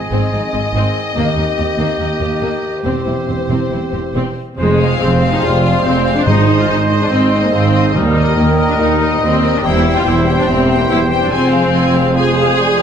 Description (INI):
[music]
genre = cinematic, heroic adventure film score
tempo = 142 BPM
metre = 4/4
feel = straight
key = unclear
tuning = A4 = 439 Hz
[part]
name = warm symphonic violin section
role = melody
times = 0.0-12.8 s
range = C5 to Ab5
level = -22 LUFS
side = left 6 dB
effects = none
[part]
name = bright trombone section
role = sustained chords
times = 0.0-12.8 s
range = F2 to C4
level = -24 LUFS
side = right 2 dB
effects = none
[part]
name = clear trumpet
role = stabs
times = 0.0-12.7 s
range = G4 to C5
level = -22 LUFS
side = right 3 dB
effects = none
[part]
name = warm symphonic violin section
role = second line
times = 0.1-12.8 s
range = Bb3 to C5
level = -26 LUFS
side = left 5 dB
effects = none
[part]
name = rich symphonic viola section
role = accompaniment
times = 0.1-12.8 s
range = G3 to Ab4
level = -18 LUFS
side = equal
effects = none
[part]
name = dark symphonic cello section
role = bass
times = 0.1-12.8 s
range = Eb2 to Ab2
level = -20 LUFS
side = right 2 dB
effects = none
[part]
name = rich studio double bass section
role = bass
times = 0.1-12.8 s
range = E1 to Eb2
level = -19 LUFS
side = right 3 dB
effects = none
[part]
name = dark clarinet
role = second line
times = 4.6-12.8 s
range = G4 to Bb4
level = -26 LUFS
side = left 3 dB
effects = none
[part]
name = mellow hollow concert flute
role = second line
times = 4.6-12.8 s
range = C5 to Ab5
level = -26 LUFS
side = left 3 dB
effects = none
[part]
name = warm oboe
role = second line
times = 4.6-12.8 s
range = C5 to Eb5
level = -25 LUFS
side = equal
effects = none
[part]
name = clear French horn section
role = sustained chords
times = 4.6-12.8 s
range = G3 to Eb4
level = -25 LUFS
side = left 4 dB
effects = none
[part]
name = timpani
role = percussion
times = 6.3-8.5 s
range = Ab2 to Eb3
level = -20 LUFS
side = left 2 dB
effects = none
[sound]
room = wet recital hall reverb, RT60 1.5 s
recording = none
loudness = -12 LUFS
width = side -8 dB against mid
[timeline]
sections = 0.0-4.6 A section; 4.6-12.8 B section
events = none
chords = 0.0 Ab; 1.2 Eb; 2.8 C/E; 4.6 Fm; 6.3 Ab; 7.9 Eb; 9.6 C/E; 11.3 Fm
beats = 0.33 0.75 | 1.17 1.58 2.00 2.42 | 2.85 3.28 3.71 4.14 | 4.57 4.99 5.42 5.84 | 6.26 6.68 7.11 7.53 | 7.95 8.37 8.79 9.21 | 9.63 10.05 10.47 10.89 | 11.30 11.72 12.15 12.57